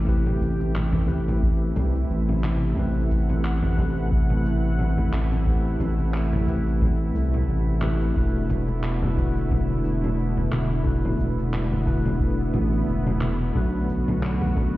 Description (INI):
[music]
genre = sunset chillout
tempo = 89 BPM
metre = 4/4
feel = swing 56% on 16ths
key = A dorian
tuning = A4 = 438 Hz
[part]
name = tine electric piano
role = accompaniment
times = 0.0-14.8 s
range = A3 to B4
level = -29 LUFS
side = left 1 dB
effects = medium stereo tremolo, auto-pan, ping-pong delay
[part]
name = lush unison pad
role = sustained chords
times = 0.0-14.8 s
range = C3 to F#5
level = -30 LUFS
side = right 1 dB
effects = chorus
[part]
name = round analog bass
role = bass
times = 0.0-14.8 s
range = E1 to C2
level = -24 LUFS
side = equal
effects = none
[part]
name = electronic cabasa, congas and handclaps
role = drums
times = 0.1-14.7 s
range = none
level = -31 LUFS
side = left 1 dB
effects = overdrive
[part]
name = electronic kick drum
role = drums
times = 0.1-14.7 s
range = none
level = -25 LUFS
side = equal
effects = none
[part]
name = congas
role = percussion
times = 0.6-14.5 s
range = none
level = -31 LUFS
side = equal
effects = none
[sound]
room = digital ambience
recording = heard muffled through a wall, stone room reverb, EQ, nothing above 10.5 kHz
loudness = -21 LUFS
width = side -17 dB against mid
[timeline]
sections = 0.0-14.8 A section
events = none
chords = 0.0 Am7; 8.2 E7sus4; 13.6 Bm7